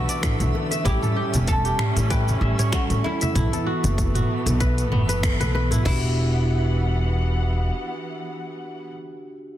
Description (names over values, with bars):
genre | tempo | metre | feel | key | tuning
organic downtempo | 96 BPM | 4/4 | swing 55% on 16ths | E dorian | A4 = 439 Hz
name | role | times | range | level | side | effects
oud | melody | 0.0-8.9 s | E4 to A4 | -30 LUFS | right 2 dB | ping-pong delay
bell-like tine electric piano | accompaniment | 0.0-9.6 s | E3 to A4 | -31 LUFS | left 2 dB | sidechain pumping, ping-pong delay
muted studio string section | sustained chords | 0.0-8.9 s | D3 to F#5 | -32 LUFS | right 1 dB | sidechain pumping
kora | arpeggios | 0.0-7.4 s | B3 to E5 | -30 LUFS | left 1 dB | ping-pong delay
upright bass | bass | 0.0-7.7 s | E1 to B1 | -22 LUFS | equal | none
twinkling granular texture | texture | 0.0-5.9 s | E5 | -38 LUFS | right 5 dB | built-in reverb
organic electronic drum kit | drums | 0.1-6.0 s | crash cymbal, finger snaps, hi-hat, shaker, toms | -26 LUFS | equal | overdrive, soft clipping on snare
electronic kick drum | drums | 0.2-6.0 s | none | -24 LUFS | equal | overdrive
bongos and congas | percussion | 0.4-5.8 s | none | -31 LUFS | left 1 dB | none
room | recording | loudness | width
light reverb, small room ambience | dense, heavily limited modern master | -20 LUFS | side -12 dB against mid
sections
0.0-5.9 A section; 5.9-8.4 B section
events
band accent 5.2-5.5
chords
0.0 Bm11; 0.9 A7; 3.4 B7sus4; 5.9 Em9